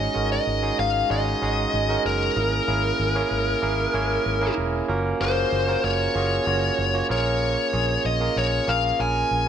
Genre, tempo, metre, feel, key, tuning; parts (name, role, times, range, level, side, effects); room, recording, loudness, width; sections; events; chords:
1980s-style pop; 95 BPM; 4/4; straight; A4 = 441 Hz
bluesy overdriven lead guitar; melody; 0.0-9.5 s; Bb4 to Ab5; -24 LUFS; left 2 dB; distortion, ping-pong delay
barky tine electric piano; accompaniment; 0.0-9.5 s; Ab3 to Db5; -26 LUFS; right 4 dB
vintage muted fingered electric bass; bass; 0.0-9.5 s; Fb1 to Bb1; -27 LUFS; left 1 dB
light reverb; -20 LUFS; side -8 dB against mid
0.0-9.5 A section
0.0 Ab7sus4; 2.4 Dbm6/Ab; 4.9 Gbmaj7